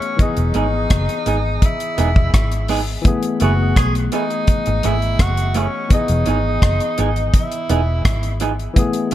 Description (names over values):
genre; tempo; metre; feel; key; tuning
lovers rock reggae; 84 BPM; 4/4; straight; unclear; A4 = 440 Hz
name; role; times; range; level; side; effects
clear tenor saxophone; melody; 0.0-8.4 s; C#4 to G#4; -24 LUFS; equal; dub echo
barky tine electric piano; accompaniment; 0.0-9.1 s; E3 to D#5; -24 LUFS; left 4 dB; overdrive, dub echo
deep reggae drum kit; drums; 0.0-9.1 s; hi-hat, kick drum, rim click; -17 LUFS; equal; none
vintage muted fingered electric bass; bass; 0.4-8.7 s; E1 to B1; -19 LUFS; equal; none
electric guitar through a small old amp; stabs; 0.5-9.1 s; E3 to G#4; -24 LUFS; right 7 dB; none
room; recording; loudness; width
small room reverb; none; -15 LUFS; side -13 dB against mid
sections
0.0-9.1 A section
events
none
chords
0.2 Emaj7; 3.0 F#m11; 5.9 Emaj7